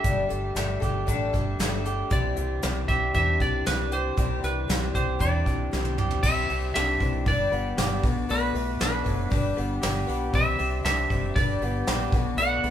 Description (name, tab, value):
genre	folk rock and heartland rock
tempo	117 BPM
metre	4/4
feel	straight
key	unclear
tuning	A4 = 435 Hz
part	clean lap steel guitar	melody	0.0-12.7 s	B4 to F#5	-28 LUFS	right 1 dB	none
part	picked twelve-string acoustic guitar	accompaniment	0.0-12.7 s	G2 to B4	-33 LUFS	left 5 dB	none
part	electric guitar through a small old amp	riff	0.0-12.7 s	G2 to G4	-31 LUFS	equal	none
part	deep dub fingered electric bass	bass	0.0-12.7 s	F#1 to E2	-29 LUFS	right 1 dB	none
part	soft brush drum kit	drums	0.0-12.7 s	crash cymbal, hi-hat, kick drum, snare drum, toms	-27 LUFS	equal	none
part	mellow tonewheel organ	sustained chords	6.2-12.7 s	B4 to D6	-41 LUFS	left 1 dB	slow rotary speaker
room	moderate stone room reverb, RT60 0.9 s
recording	band playing live in one room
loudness	-23 LUFS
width	side -10 dB against mid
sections	0.0-6.2 A section; 6.2-12.7 B section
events	drum fill 5.7-6.2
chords	0.0 Gsus2; 2.1 Cadd9; 7.3 G; 8.0 Bm7; 9.3 G; 10.3 Cadd9; 11.4 G; 12.1 Bm7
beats	| 0.04 0.56 1.08 1.59 | 2.11 2.63 3.15 3.66 | 4.18 4.69 5.21 5.72 | 6.24 6.75 7.26 7.78 | 8.29 8.80 9.31 9.82 | 10.34 10.85 11.36 11.87 | 12.38